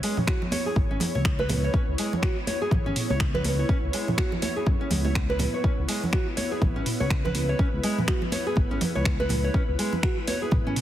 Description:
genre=afro house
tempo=123 BPM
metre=4/4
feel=swing 59% on 16ths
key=C# minor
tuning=A4 = 441 Hz
part: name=ethereal airy pad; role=sustained chords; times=0.0-10.8 s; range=B3 to C#5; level=-33 LUFS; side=equal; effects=ensemble chorus, built-in reverb, tremolo, sidechain pumping
part: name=nylon-string guitar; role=arpeggios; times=0.0-10.8 s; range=G#3 to C#5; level=-30 LUFS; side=equal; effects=sidechain pumping, ping-pong delay
part: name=afro-pop drum kit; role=drums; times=0.0-10.8 s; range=finger snaps, hi-hat, toms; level=-32 LUFS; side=equal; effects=none
part: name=congas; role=percussion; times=0.2-10.6 s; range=none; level=-32 LUFS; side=right 2 dB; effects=none
part: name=electronic kick drum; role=drums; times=0.3-10.6 s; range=none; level=-25 LUFS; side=equal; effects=none
part: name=smooth gliding synth bass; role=bass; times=0.8-10.7 s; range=G#1 to F#2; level=-28 LUFS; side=equal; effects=sidechain pumping
room=light reverb, digital ambience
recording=heavily compressed radio sound, multiband compression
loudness=-23 LUFS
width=side -12 dB against mid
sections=0.0-10.8 A section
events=none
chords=0.0 C#m7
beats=0.28 0.76 1.25 | 1.74 2.23 2.71 3.20 | 3.69 4.18 4.67 5.15 | 5.64 6.13 6.62 7.11 | 7.59 8.08 8.57 9.06 | 9.54 10.03 10.52

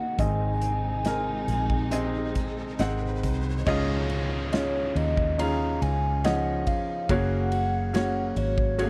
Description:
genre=pop ballad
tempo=70 BPM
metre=4/4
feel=straight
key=Db major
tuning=A4 = 440 Hz
part: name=hollow clarinet-like synth lead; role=melody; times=0.0-8.9 s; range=Db5 to Bb5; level=-33 LUFS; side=equal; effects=chorus
part: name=warm grand piano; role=accompaniment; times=0.0-8.9 s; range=Ab2 to Gb5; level=-32 LUFS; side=equal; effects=none
part: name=warm studio string section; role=sustained chords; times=0.0-3.6 s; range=C3 to Gb4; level=-39 LUFS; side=equal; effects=none
part: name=picked steel-string acoustic guitar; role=arpeggios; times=0.0-8.9 s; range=Ab2 to Bb4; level=-41 LUFS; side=equal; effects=none
part: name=riser and downlifter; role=sound effects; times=0.2-8.9 s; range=none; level=-43 LUFS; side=equal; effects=none
part: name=vintage muted fingered electric bass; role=bass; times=0.2-8.9 s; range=Gb1 to Eb2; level=-31 LUFS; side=equal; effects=none
part: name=natural country drum kit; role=drums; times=0.2-8.9 s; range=crash cymbal, hi-hat, kick drum, ride cymbal, snare drum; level=-33 LUFS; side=equal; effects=none
room=little or no reverb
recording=dry, close 1970s-style studio recording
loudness=-26 LUFS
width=mono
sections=0.0-3.7 A section; 3.7-8.9 B section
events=riser 0.2-3.7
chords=0.2 Ab; 3.7 Dbadd9; 7.1 Gbadd9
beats=| 0.19 1.05 1.92 2.79 | 3.67 4.53 5.39 6.24 | 7.09 7.94 8.79

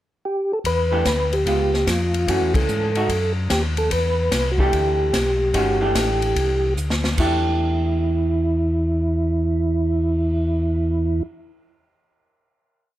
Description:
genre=soul jazz organ trio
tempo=147 BPM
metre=4/4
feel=swing 66% on 8ths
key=E minor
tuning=A4 = 440 Hz
part: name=percussive tonewheel organ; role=melody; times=0.3-11.2 s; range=E4 to B4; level=-22 LUFS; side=right 1 dB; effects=chorus vibrato, slow rotary speaker
part: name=mellow tonewheel organ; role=bass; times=0.6-11.2 s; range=G1 to G#2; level=-22 LUFS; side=left 1 dB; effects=chorus vibrato, slow rotary speaker
part: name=swinging big-band drum kit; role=drums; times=0.6-10.4 s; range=crash cymbal, cymbal swell, hi-hat, kick drum, ride cymbal, snare drum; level=-25 LUFS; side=left 1 dB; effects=none
part: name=vintage hollow-body jazz guitar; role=accompaniment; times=0.9-11.7 s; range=D#3 to G4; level=-26 LUFS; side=right 2 dB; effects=none
room=light reverb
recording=none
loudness=-18 LUFS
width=side -13 dB against mid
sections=0.0-0.6 pickup bar; 0.6-7.2 A section; 7.2-10.5 final chord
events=band accent 2.5; drum fill 6.8-7.2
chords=0.0 N.C.; 0.6 Em7; 1.5 C#7; 2.3 F#m7; 3.1 D#dim; 3.9 Em11; 7.2 Em7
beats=0.24 | 0.65 1.05 1.46 1.87 | 2.28 2.69 3.09 3.50 | 3.91 4.32 4.73 5.13 | 5.54 5.95 6.36 6.77 | 7.18 7.59 8.00 8.41 | 8.82 9.23 9.64 10.05

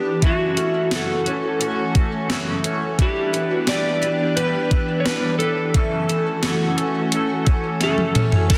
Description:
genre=dream pop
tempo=87 BPM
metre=4/4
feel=straight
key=unclear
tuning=A4 = 439 Hz
part: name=electric slide guitar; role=melody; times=0.0-8.6 s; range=F#4 to D5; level=-26 LUFS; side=equal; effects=tape echo
part: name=clean electric guitar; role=accompaniment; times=0.0-8.6 s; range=F#2 to B4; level=-30 LUFS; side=equal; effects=tremolo, subtle chorus
part: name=soft string machine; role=sustained chords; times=0.0-8.6 s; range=E3 to B4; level=-28 LUFS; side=equal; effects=ensemble chorus
part: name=picked twelve-string acoustic guitar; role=arpeggios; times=0.0-8.6 s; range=E3 to G4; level=-29 LUFS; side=equal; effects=analog chorus, tape echo
part: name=gated 80s digital drum machine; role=drums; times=0.2-8.6 s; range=crash cymbal, hi-hat, kick drum, ride cymbal, snare drum, toms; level=-22 LUFS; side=equal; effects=gated reverb, gated reverb snare
room=moderate lush hall reverb, RT60 2.1 s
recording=dense, heavily limited modern master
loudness=-21 LUFS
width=mono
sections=0.0-8.5 A section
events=drum fill 7.8-8.5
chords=0.2 F#m7; 3.0 Em7; 5.7 F#m7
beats=| 0.23 0.92 1.60 2.29 | 2.98 3.67 4.36 5.05 | 5.74 6.43 7.12 7.81 | 8.50

